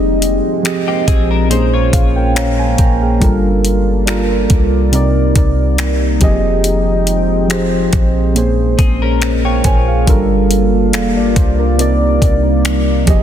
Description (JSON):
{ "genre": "contemporary R&B", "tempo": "70 BPM", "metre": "4/4", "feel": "swing 54% on 16ths", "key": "G phrygian", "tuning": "A4 = 441 Hz", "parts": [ { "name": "muted felt-like synth keys", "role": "accompaniment", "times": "0.0-13.2 s", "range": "Bb2 to Bb5", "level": "-16 LUFS", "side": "right 2 dB", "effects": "chorus" }, { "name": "deep dark ambient pad", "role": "sustained chords", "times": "0.0-13.2 s", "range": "C3 to A5", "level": "-19 LUFS", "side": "left 1 dB", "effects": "chorus, built-in reverb" }, { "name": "clean 808-style bass", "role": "bass", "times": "0.0-13.2 s", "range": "F1 to C2", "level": "-16 LUFS", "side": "equal", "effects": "none" }, { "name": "trap drum kit", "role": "drums", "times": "0.2-13.2 s", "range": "finger snaps, hi-hat, kick drum", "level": "-15 LUFS", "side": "equal", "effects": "soft clipping on snare" }, { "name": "direct-recorded clean electric guitar", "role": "arpeggios", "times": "0.9-3.0, 8.8-10.0 s", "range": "Bb3 to Db5", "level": "-23 LUFS", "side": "left 8 dB", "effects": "wide subtle chorus, tape echo" } ], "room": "light reverb", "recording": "dense, heavily limited modern master", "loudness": "-11 LUFS", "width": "side -10 dB against mid", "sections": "0.0-13.2 A section", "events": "synth keys fill 1.9-3.2", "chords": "0.0 Fm9; 1.5 Bbm9; 3.2 Gm9; 4.9 Cm9; 6.2 Fm9; 8.4 Bbm9; 10.1 Gm9; 11.8 Cm9" }